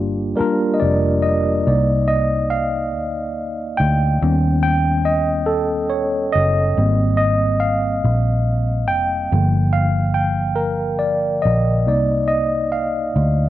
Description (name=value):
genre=slow six-eight R&B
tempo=47 BPM (dotted quarters)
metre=6/8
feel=straight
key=C minor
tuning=A4 = 439 Hz
part: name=tine electric piano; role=accompaniment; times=0.0-13.5 s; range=D3 to G5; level=-18 LUFS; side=equal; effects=medium stereo tremolo
part: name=fingered electric bass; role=bass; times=0.0-13.5 s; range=F1 to Eb2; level=-19 LUFS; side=equal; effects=none
room=light reverb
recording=worn, warbling old tape, cassette tape, warbly pitch drift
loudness=-16 LUFS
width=side -14 dB against mid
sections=0.0-1.7 A section; 1.7-13.5 B section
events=tine electric piano solo 1.7-13.5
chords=0.0 Gm7; 1.7 Cm9; 4.2 Eb7alt; 6.8 Abmaj9; 9.3 Gm7; 11.9 Cm9